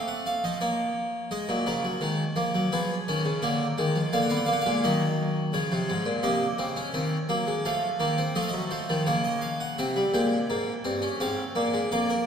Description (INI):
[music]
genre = classical, baroque-style 3-part fugue for harpsichord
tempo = 85 BPM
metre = 3/4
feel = straight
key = unclear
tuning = A4 = 441 Hz
[part]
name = harpsichord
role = solo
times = 0.0-12.3 s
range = F2 to G5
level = -24 LUFS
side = equal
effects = none
[sound]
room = wet concert hall reverb, RT60 2.2 s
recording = none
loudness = -24 LUFS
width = side -7 dB against mid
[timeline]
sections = 0.0-9.8 A section; 9.8-12.3 B section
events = none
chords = 0.0 F7/A; 0.6 Bbm; 1.3 Ebm; 2.7 Fdim; 3.4 Bb7/D; 4.8 Ebm; 5.5 Bbm; 6.9 Cdim/Eb; 7.6 F7; 9.1 Bbm/Db; 9.8 C7; 11.2 Fm/Ab